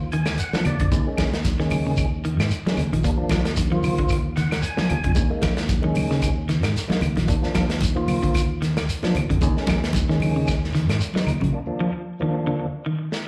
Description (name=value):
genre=afrobeat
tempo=113 BPM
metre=4/4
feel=swing 56% on 16ths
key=Eb minor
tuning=A4 = 440 Hz
part: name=fingered electric bass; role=bass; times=0.0-11.5 s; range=Bb1 to Ab2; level=-27 LUFS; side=equal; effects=none
part: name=tonewheel organ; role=accompaniment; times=0.1-13.3 s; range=Eb2 to Ab5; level=-31 LUFS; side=equal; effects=overdrive, fast rotary speaker, slapback echo
part: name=clean electric guitar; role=arpeggios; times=0.1-13.1 s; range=Db3 to Gb3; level=-29 LUFS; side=equal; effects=slapback echo
part: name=crunchy breakbeat drum kit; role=drums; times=0.1-13.3 s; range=hi-hat, kick drum, snare drum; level=-28 LUFS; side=equal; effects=none
part: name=shekere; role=percussion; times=0.1-11.4 s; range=none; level=-34 LUFS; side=equal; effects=none
part: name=claves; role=percussion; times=0.3-11.4 s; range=none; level=-37 LUFS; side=equal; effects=none
part: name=congas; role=percussion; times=0.5-11.5 s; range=none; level=-31 LUFS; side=equal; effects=none
room=light reverb, small room reverb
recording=live gig heard through the venue's PA, club reverb, lossy compression artefacts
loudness=-22 LUFS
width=mono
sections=0.0-13.3 A section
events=tonewheel organ fill 0.0-0.9, 4.1-5.2; break 11.5-13.3; drum fill 13.1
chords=0.0 Bb; 0.9 Eb7(no3); 3.0 Bb7/Eb; 5.2 Eb7(no3); 7.3 Bb/Eb; 9.4 Eb7(no3); 11.5 Bb/Eb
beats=0.39 | 0.92 1.45 1.98 2.51 | 3.04 3.57 4.10 4.63 | 5.16 5.70 6.23 6.76 | 7.29 7.82 8.35 8.88 | 9.41 9.95 10.48 11.01 | 11.54 12.06 12.59 13.12